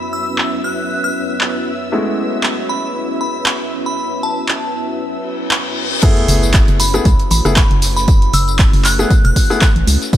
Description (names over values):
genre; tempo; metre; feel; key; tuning
deep house; 117 BPM; 4/4; swing 55% on 16ths; F# minor; A4 = 440 Hz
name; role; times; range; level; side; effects
glassy synth bell; melody; 0.0-9.8 s; A5 to F#6; -22 LUFS; left 1 dB; chorus, tremolo, digital delay
soft string machine; sustained chords; 0.0-10.2 s; F#2 to C#5; -23 LUFS; equal; ensemble chorus, sidechain pumping
felt-muted upright piano; stabs; 0.0-9.6 s; G#3 to G#4; -20 LUFS; left 2 dB; sidechain pumping, low-pass filter, dub echo
dark studio violin section; texture; 0.0-6.0 s; E5 to E6; -29 LUFS; equal; sidechain pumping
punchy analog drum machine; drums; 0.4-10.2 s; crash cymbal, handclaps, hi-hat, tambourine; -19 LUFS; equal; low-pass filter on hats, low-pass filter on snare, low-pass filter on cymbals, low-pass filter on perc, low-pass filter on room
reverse cymbal and sub drop; sound effects; 5.3-8.1 s; none; -24 LUFS; left 2 dB; none
big rock drum kit; drums; 6.0-10.2 s; hi-hat, snare drum; -31 LUFS; right 4 dB; none
electronic kick drum; drums; 6.0-10.2 s; none; -12 LUFS; equal; none
organ-like FM bass; bass; 6.3-10.0 s; E1 to C#2; -16 LUFS; equal; sidechain pumping
room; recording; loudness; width
light reverb, digital ambience; none; -13 LUFS; side -12 dB against mid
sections
0.0-6.0 A section; 6.0-10.2 B section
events
filter sweep on felt piano 0.0-6.0; filter sweep on string machine 0.0-6.0; reverse cymbal 5.3-6.0; drop 6.0-10.2; impact 6.0-8.1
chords
0.0 F#m11